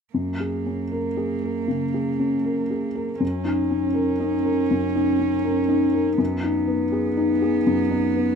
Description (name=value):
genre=neoclassical piano and strings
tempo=80 BPM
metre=4/4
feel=rubato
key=F# major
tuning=A4 = 435 Hz
part: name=warm cello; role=second line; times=0.1-8.4 s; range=A#3 to C#4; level=-26 LUFS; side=right 8 dB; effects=none
part: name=felt-muted upright piano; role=accompaniment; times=0.1-8.4 s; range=F#2 to A#4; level=-22 LUFS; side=left 3 dB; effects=none
room=moderate large studio reverb, RT60 1.0 s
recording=minimal, uncompressed stereo recording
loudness=-20 LUFS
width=side -6 dB against mid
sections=0.1-8.4 A section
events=none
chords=0.1 F#add9; 3.2 D#m7/F#; 6.2 G#m/F#